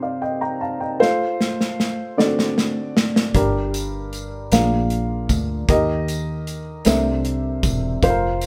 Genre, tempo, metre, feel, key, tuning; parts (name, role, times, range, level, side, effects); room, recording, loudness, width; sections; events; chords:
slow gospel; 51 BPM (dotted quarters); 6/8; straight; A4 = 442 Hz
dark upright piano; accompaniment; 0.0-8.5 s; G2 to Bb5; -24 LUFS; equal
natural country drum kit; drums; 1.0-8.5 s; hi-hat, kick drum, snare drum; -23 LUFS; equal
fingered electric bass; bass; 3.3-8.5 s; E1 to Eb2; -27 LUFS; equal
tambourine; percussion; 3.7-8.5 s; -36 LUFS; equal
little or no reverb; band playing live in one room; -21 LUFS; mono
0.0-8.5 A section
drum fill 1.0-3.4
0.0 Cm; 1.0 F; 2.2 D7; 3.4 Gm; 4.5 Bb7; 5.7 Eb; 6.9 C13